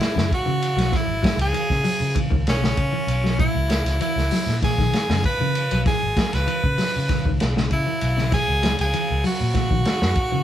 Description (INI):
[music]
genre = afrobeat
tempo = 97 BPM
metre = 4/4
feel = straight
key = C# dorian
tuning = A4 = 440 Hz
[part]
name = edgy tenor saxophone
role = melody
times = 0.0-10.4 s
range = C#4 to B4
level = -24 LUFS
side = right 1 dB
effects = none
[part]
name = semi-hollow electric guitar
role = arpeggios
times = 0.0-10.4 s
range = C#3 to F#3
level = -27 LUFS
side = left 1 dB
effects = none
[part]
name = vintage drum kit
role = drums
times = 0.0-10.3 s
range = hi-hat, kick drum, ride cymbal, snare drum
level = -24 LUFS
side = equal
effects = none
[part]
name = vintage muted fingered electric bass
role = bass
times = 0.2-10.4 s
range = G#1 to C#3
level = -24 LUFS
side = equal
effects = none
[sound]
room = light reverb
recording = band playing live in one room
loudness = -19 LUFS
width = side -11 dB against mid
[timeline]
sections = 0.0-10.4 A section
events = none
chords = 0.0 C#m7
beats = 0.30 | 0.92 1.54 2.15 2.77 | 3.39 4.00 4.62 5.23 | 5.85 6.47 7.08 7.70 | 8.31 8.93 9.54 10.16